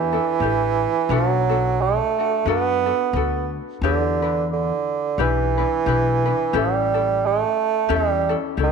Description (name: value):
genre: Hawaiian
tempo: 88 BPM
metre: 4/4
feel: swing 59% on 8ths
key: unclear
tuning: A4 = 439 Hz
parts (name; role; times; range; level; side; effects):
- warm bassoon; melody; 0.0-8.7 s; D3 to B3; -20 LUFS; right 7 dB; slapback echo
- ukulele; accompaniment; 0.0-8.7 s; C#4 to B4; -26 LUFS; left 14 dB; none
- upright bass; bass; 0.0-8.7 s; A1 to F#2; -24 LUFS; left 3 dB; none
room: moderate echo chamber reverb, RT60 2.4 s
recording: 1960s-style stereo with parts hard left and right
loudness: -18 LUFS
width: side -5 dB against mid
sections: 0.0-8.7 A section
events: none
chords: 0.0 A7sus4; 1.1 Bm7; 3.8 Em7; 6.5 A7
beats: 0.41 | 1.09 1.77 2.45 3.13 | 3.81 4.49 5.17 5.86 | 6.54 7.21 7.90 8.58